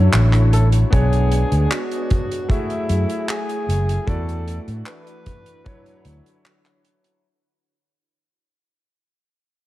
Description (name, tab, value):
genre	vaporwave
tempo	76 BPM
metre	4/4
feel	straight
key	unclear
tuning	A4 = 441 Hz
part	breathy alto saxophone	melody	0.0-6.4 s	E4 to B4	-28 LUFS	equal	tape echo
part	warm electric grand piano	accompaniment	0.0-7.3 s	F#3 to E5	-27 LUFS	left 2 dB	wide subtle chorus, tape echo
part	soft string machine	sustained chords	0.0-7.2 s	D3 to C#5	-30 LUFS	equal	ensemble chorus
part	fingered electric bass	bass	0.0-6.2 s	F#1 to A2	-16 LUFS	equal	tube saturation
part	open jazz drum kit	drums	0.1-7.2 s	handclaps, hi-hat	-27 LUFS	right 1 dB	none
part	kick drum	drums	0.9-5.8 s	none	-21 LUFS	equal	none
room	light reverb, small room reverb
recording	cassette tape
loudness	-16 LUFS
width	side -16 dB against mid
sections	0.0-7.2 A section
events	fade-out 0.0-7.2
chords	0.0 Dmaj9; 0.9 Bm69; 2.5 F#m9; 4.1 E9sus4; 5.7 Dmaj9